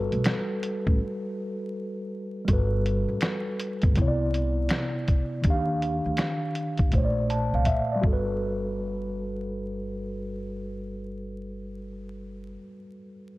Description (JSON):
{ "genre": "lo-fi hip hop", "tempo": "81 BPM", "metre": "4/4", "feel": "swing 63% on 16ths", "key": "G major", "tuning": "A4 = 440 Hz", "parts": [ { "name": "mellow tine electric piano", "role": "accompaniment", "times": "0.0-13.4 s", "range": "Bb2 to A5", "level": "-29 LUFS", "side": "equal", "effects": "medium stereo tremolo, cassette tape, low-pass filter" }, { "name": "upright bass", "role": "bass", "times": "0.0-12.6 s", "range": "G1 to Eb2", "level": "-30 LUFS", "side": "equal", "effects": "none" }, { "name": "lo-fi sampler-style drum kit", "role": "drums", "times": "0.1-8.3 s", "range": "finger snaps, hi-hat, kick drum, snare drum", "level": "-25 LUFS", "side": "equal", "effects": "none" } ], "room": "light reverb", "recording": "dark, warm production, vinyl crackle", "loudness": "-24 LUFS", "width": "side -19 dB against mid", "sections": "0.0-2.5 A section; 2.5-8.4 B section; 8.4-11.4 C section", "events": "break 1.0-2.5; tine electric piano fill 6.9-8.4; drum fill 7.7-8.4", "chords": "0.0 Gmaj9; 4.0 Cmaj9; 5.4 Ebmaj9; 6.9 Bbmaj9; 8.0 Gmaj9" }